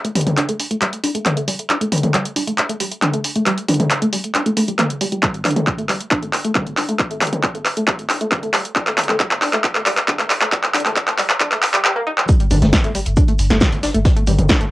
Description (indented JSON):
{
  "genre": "driving peak-time techno",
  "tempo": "136 BPM",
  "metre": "4/4",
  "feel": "straight",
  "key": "unclear",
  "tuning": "A4 = 441 Hz",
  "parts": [
    { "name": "tight sequenced synth", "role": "riff", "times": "0.0-14.7 s", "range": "G3 to Eb4", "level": "-22 LUFS", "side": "equal", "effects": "chorus, phaser, tube saturation, sidechain pumping, cassette tape, analog delay" },
    { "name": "techno drum kit", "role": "drums", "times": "0.0-14.7 s", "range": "handclaps, hi-hat, snare drum, toms", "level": "-17 LUFS", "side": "equal", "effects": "sidechain pumping on hats, cassette tape, sidechain pumping on toms" },
    { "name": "electronic kick drum", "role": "drums", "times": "5.2-14.6 s", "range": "none", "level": "-18 LUFS", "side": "equal", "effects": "cassette tape" },
    { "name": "jazz brush drum kit", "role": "drums", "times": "12.3-14.6 s", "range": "hi-hat, shaker, snare drum", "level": "-31 LUFS", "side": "left 1 dB", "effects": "sidechain pumping on hats, high-pass filter on hats, low-pass filter on hats, cassette tape, high-pass filter on snare, low-pass filter on snare, sidechain pumping on perc, high-pass filter on perc, low-pass filter on perc, high-pass filter on room, low-pass filter on room" },
    { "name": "warm sub bass", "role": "bass", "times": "12.5-14.7 s", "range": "G1", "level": "-18 LUFS", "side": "equal", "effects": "sidechain pumping, low-pass filter" }
  ],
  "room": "wet booth ambience, RT60 0.3 s",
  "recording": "home recording on cassette, high-pass filter",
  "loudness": "-15 LUFS",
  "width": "side -18 dB against mid",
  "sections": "0.0-12.3 A section; 12.3-14.7 B section",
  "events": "build-up 0.0-12.3; drum fill 0.0-11.8, 11.8-12.3; filter sweep on synth arpeggio sound 0.0-12.3; drop 12.3-14.7",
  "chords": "0.0 G5; 12.3 N.C."
}